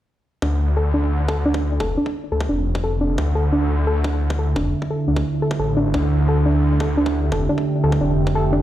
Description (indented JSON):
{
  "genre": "dark technical drum and bass",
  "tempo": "174 BPM",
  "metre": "4/4",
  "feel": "straight",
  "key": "D minor",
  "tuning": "A4 = 437 Hz",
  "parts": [
    { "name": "deep dark ambient pad", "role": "sustained chords", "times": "2.6-8.6 s", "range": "D4 to G5", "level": "-23 LUFS", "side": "right 2 dB", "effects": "chorus, built-in reverb, sidechain pumping" },
    { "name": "soft round pluck", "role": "arpeggios", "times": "0.4-8.6 s", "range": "D4 to A4", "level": "-23 LUFS", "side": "equal", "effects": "chorus, sidechain pumping, ping-pong delay" },
    { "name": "wide detuned saw bass", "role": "bass", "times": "0.4-8.6 s", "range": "F1 to D2", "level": "-20 LUFS", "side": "equal", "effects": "chorus, tube saturation" },
    { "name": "electronic kick drum", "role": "drums", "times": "0.4-8.3 s", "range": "none", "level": "-29 LUFS", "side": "equal", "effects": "high-pass filter on kick, high-pass filter on room" }
  ],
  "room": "light reverb",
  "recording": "played on a big sound system in a bare room, stone room reverb",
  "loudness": "-18 LUFS",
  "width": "side -13 dB against mid",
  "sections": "0.4-8.6 A section",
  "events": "filter sweep on ambient pad 0.4-8.6; filter sweep on synth pluck 0.4-8.6",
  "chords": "0.4 Dm"
}